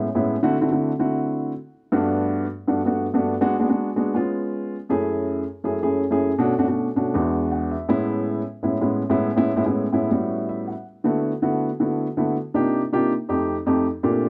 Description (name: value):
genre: jazz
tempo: 161 BPM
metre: 4/4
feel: straight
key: A major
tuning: A4 = 441 Hz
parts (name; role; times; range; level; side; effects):
- warm upright piano; solo; 0.0-14.3 s; E2 to F#5; -22 LUFS; equal; none
room: small room ambience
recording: dry, close 1970s-style studio recording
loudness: -23 LUFS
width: mono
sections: 0.0-10.9 A section; 10.9-14.3 B section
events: upright piano fill 7.3-7.9, 10.3-10.9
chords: 0.4 D7; 1.9 Gmaj7; 3.4 G#m7b5; 4.2 C#7; 4.9 F#m7; 6.4 Bm7; 7.1 E7; 7.9 Amaj7; 10.1 A13; 10.9 D69; 12.4 Cm11; 13.1 F7